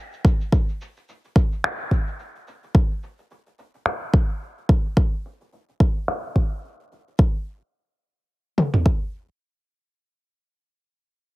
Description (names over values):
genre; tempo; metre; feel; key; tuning
organic downtempo; 108 BPM; 4/4; swing 56% on 16ths; none; none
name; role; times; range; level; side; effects
electronic cabasa and finger snaps; drums; 0.1-7.2 s; none; -27 LUFS; equal; low-pass filter on hats, low-pass filter on perc, low-pass filter on snare, low-pass filter on room
deep house drum kit; drums; 0.2-9.0 s; kick drum, toms; -18 LUFS; equal; none
room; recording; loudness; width
little or no reverb; heavily compressed radio sound; -20 LUFS; side -20 dB against mid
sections
0.0-7.2 A section; 7.2-9.4 B section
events
filter sweep on drum 0.0-7.2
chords
none